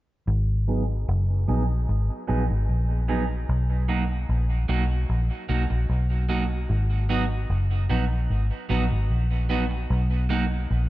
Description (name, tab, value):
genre	dub reggae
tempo	75 BPM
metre	4/4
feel	straight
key	G# minor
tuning	A4 = 441 Hz
part	vintage muted fingered electric bass	bass	0.3-10.9 s	F#1 to B1	-23 LUFS	equal	none
part	clean electric guitar	accompaniment	0.7-10.4 s	F#3 to G#4	-29 LUFS	right 3 dB	spring reverb, low-pass filter, dub echo
room	little or no reverb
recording	echo-heavy mix, nothing above 7.7 kHz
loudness	-22 LUFS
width	side -16 dB against mid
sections	0.3-6.7 A section; 6.7-10.9 B section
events	filter sweep on clean electric guitar 0.3-6.7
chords	0.3 G#m7; 3.5 Bmaj7; 6.7 G#m7; 9.9 Bmaj7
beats	| 0.28 1.08 1.88 2.68 | 3.48 4.28 5.08 5.89 | 6.69 7.49 8.29 9.09 | 9.89 10.70